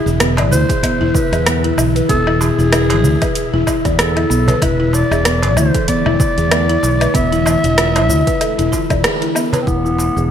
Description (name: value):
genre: organic downtempo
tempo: 95 BPM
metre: 4/4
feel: swing 57% on 16ths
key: unclear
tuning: A4 = 436 Hz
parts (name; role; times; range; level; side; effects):
- growling clarinet; melody; 0.0-10.3 s; B3 to E5; -20 LUFS; equal; ping-pong delay
- ethereal airy pad; sustained chords; 0.0-9.6 s; B2 to E4; -23 LUFS; equal; ensemble chorus, built-in reverb, sidechain pumping
- buzzing marimba with soft mallets; arpeggios; 0.0-10.3 s; B3 to D5; -19 LUFS; left 2 dB; low-pass filter, ping-pong delay
- wind-like tuned noise texture; texture; 0.0-9.7 s; E4 to E5; -30 LUFS; left 1 dB; built-in reverb
- fretless electric bass; bass; 0.1-10.3 s; E1 to E2; -17 LUFS; right 1 dB; sidechain pumping
- deep house drum kit; drums; 0.1-10.3 s; hi-hat, rim click, shaker, woodblock; -19 LUFS; equal; overdrive, studio reverb, gated reverb
- darbuka; percussion; 0.4-10.1 s; none; -23 LUFS; right 3 dB; none
- electronic kick drum; drums; 0.7-9.8 s; none; -20 LUFS; equal; overdrive, studio reverb
room: light reverb, digital ambience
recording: bright 1980s-style digital production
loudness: -12 LUFS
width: side -9 dB against mid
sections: 0.0-9.7 A section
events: band accent 9.0-9.4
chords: 0.0 E7; 4.6 Dsus2/E; 9.7 E